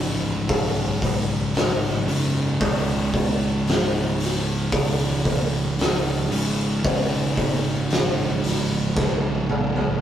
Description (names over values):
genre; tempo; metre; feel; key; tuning
stoner and doom metal; 57 BPM; 4/4; straight; unclear; A4 = 440 Hz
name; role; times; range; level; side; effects
thick fuzz guitar; riff; 0.0-10.0 s; C#2 to C#3; -29 LUFS; left 4 dB; distortion
thick fuzz guitar; riff; 0.0-10.0 s; C#2 to C#3; -24 LUFS; right 2 dB; distortion
fuzz picked electric bass; bass; 0.0-10.0 s; C#1 to B1; -32 LUFS; equal; overdrive
oversized low-tuned drum kit; drums; 0.5-10.0 s; hi-hat, kick drum, snare drum, toms; -23 LUFS; equal; none
room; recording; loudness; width
light reverb; rough rehearsal-room recording, tube saturation; -20 LUFS; side -10 dB against mid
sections
0.0-10.0 A section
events
drum fill 9.0-10.0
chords
0.0 C#5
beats
0.49 1.55 | 2.60 3.66 4.72 5.78 | 6.84 7.91 8.97